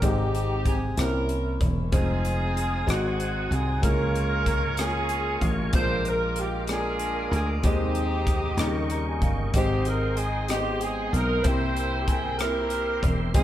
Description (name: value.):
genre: slow gospel.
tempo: 63 BPM (dotted quarters).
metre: 6/8.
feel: straight.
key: Ab major.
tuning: A4 = 440 Hz.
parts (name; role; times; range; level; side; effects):
clear alto saxophone; melody; 0.0-13.4 s; Gb4 to C5; -32 LUFS; right 2 dB; none.
warm saxophone section; melody; 0.0-13.4 s; C4 to G5; -31 LUFS; equal; none.
warm upright piano; accompaniment; 0.0-13.4 s; Ab2 to Bb5; -31 LUFS; left 2 dB; none.
dry thumbed slap bass; bass; 0.0-13.4 s; E1 to Eb2; -27 LUFS; equal; none.
crisp fusion drum kit; drums; 0.0-13.4 s; hi-hat, kick drum, rim click; -28 LUFS; equal; none.
tonewheel organ; sustained chords; 1.9-13.4 s; Ab3 to Eb6; -34 LUFS; right 2 dB; fast rotary speaker, overdrive, chorus vibrato.
room: moderate stone room reverb, RT60 1.1 s.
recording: band playing live in one room.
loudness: -23 LUFS.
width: side -12 dB against mid.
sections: 0.0-13.4 A section.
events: upright piano fill 8.6-9.5.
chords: 0.0 Abmaj7; 1.0 C7b9; 1.9 Fm7; 2.9 Ab7; 3.8 Db6; 5.7 Bb7; 7.6 Ab/Eb; 8.6 Eb7; 9.5 Abmaj7; 11.4 C7.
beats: | 0.02 0.97 | 1.93 2.88 | 3.83 4.79 | 5.74 6.69 | 7.64 8.59 | 9.54 10.50 | 11.45 12.40 | 13.35.